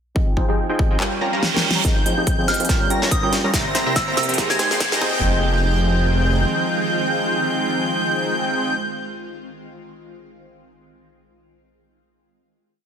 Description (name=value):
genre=future bass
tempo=142 BPM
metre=4/4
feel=swing 56% on 16ths, half-time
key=F minor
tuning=A4 = 440 Hz
part: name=mellow tine electric piano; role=accompaniment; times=0.1-8.8 s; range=C3 to G5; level=-28 LUFS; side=right 2 dB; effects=phaser, sidechain pumping, digital delay
part: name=shimmering ambient pad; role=sustained chords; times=1.2-8.8 s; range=Eb3 to G4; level=-28 LUFS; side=right 1 dB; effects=chorus, built-in reverb, phaser, sidechain pumping
part: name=supersaw stab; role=riff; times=0.2-8.7 s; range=F3 to C6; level=-24 LUFS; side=equal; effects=sidechain pumping, low-pass filter
part: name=electronic kick drum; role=drums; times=0.2-5.1 s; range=none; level=-21 LUFS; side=equal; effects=studio reverb
part: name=big-room dance drum kit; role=drums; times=1.0-5.0 s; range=handclaps, hi-hat, snare drum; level=-23 LUFS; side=equal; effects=high-pass filter on snare, studio reverb, high-pass filter on hats
part: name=reverse cymbal and riser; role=sound effects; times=1.2-5.2 s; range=none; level=-28 LUFS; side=right 4 dB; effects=none
part: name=airy dreamy lead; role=arpeggios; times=1.8-8.7 s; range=G6 to C7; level=-25 LUFS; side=equal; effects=chorus, sidechain pumping, digital delay
part: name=wide detuned saw bass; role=bass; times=1.8-6.5 s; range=F1 to Ab2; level=-24 LUFS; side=equal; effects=chorus, sidechain pumping, high-pass filter
part: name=soft synth bell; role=melody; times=2.5-4.7 s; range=Eb6 to Ab6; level=-25 LUFS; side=right 1 dB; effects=chorus, phaser, sidechain pumping, digital delay
room=moderate lush hall reverb, RT60 1.7 s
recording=dense, heavily limited modern master, high-pass filter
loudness=-17 LUFS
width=side -8 dB against mid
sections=0.2-1.8 intro; 1.8-5.2 build; 5.2-8.6 final hit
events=filter sweep on supersaw synth 0.2-1.8, 1.8-5.2; reverse cymbal 1.2-1.8; drum fill 1.4-1.8, 1.8-5.2; build-up 1.8-5.2; riser 1.8-5.2; filter sweep 1.8-5.2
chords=0.2 Fm7; 1.0 Gm7b5; 1.8 Fm7; 2.7 Gm7b5; 3.5 C7; 4.4 Abmaj7; 5.0 Fm7